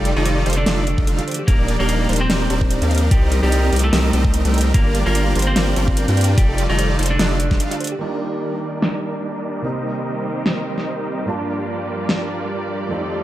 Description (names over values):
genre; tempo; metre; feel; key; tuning
future bass; 147 BPM; 4/4; swing 56% on 16ths, half-time; G minor; A4 = 440 Hz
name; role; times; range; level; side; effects
electric guitar at the edge of break-up; melody; 0.0-7.9 s; D3 to C5; -24 LUFS; right 1 dB; sidechain pumping, tape echo
bright studio string section; sustained chords; 0.0-13.2 s; Bb2 to D5; -30 LUFS; left 1 dB; sidechain pumping, low-pass filter
thumb-piano-like synth pluck; arpeggios; 0.0-8.0 s; F4 to Bb5; -32 LUFS; right 2 dB; chorus, sidechain pumping, digital delay
supersaw chords; riff; 0.0-13.2 s; G3 to G5; -23 LUFS; right 1 dB; sidechain pumping, low-pass filter
saturated sub bass; bass; 0.0-7.6 s; Eb1 to G2; -19 LUFS; equal; sidechain pumping
pop drum kit; drums; 0.1-12.2 s; crash cymbal, hi-hat, snare drum; -23 LUFS; equal; overdrive, low-pass filter on hats, low-pass filter on snare, low-pass filter on cymbals, low-pass filter on room
electronic kick drum; drums; 1.0-7.6 s; none; -17 LUFS; equal; none
dark concert grand piano; accompaniment; 8.0-13.2 s; F2 to A5; -28 LUFS; right 2 dB; sidechain pumping, digital delay
room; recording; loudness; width
light reverb; none; -16 LUFS; side -14 dB against mid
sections
0.0-8.0 A section; 8.0-13.2 B section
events
drop 0.0-8.0; break 7.6-8.0; filter sweep on drum 8.0-13.2; filter sweep on string section 8.0-13.2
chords
0.0 F13; 1.5 Ebmaj7; 3.1 Cm7; 4.7 Gm7; 6.4 F13; 8.0 Ebmaj7; 9.6 Cm7; 11.3 Gm7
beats
0.26 0.66 1.07 | 1.48 1.89 2.30 2.70 | 3.11 3.52 3.93 4.34 | 4.75 5.15 5.56 5.97 | 6.38 6.79 7.19 7.60 | 8.01 8.42 8.83 9.23 | 9.64 10.05 10.46 10.87 | 11.28 11.68 12.09 12.50 | 12.91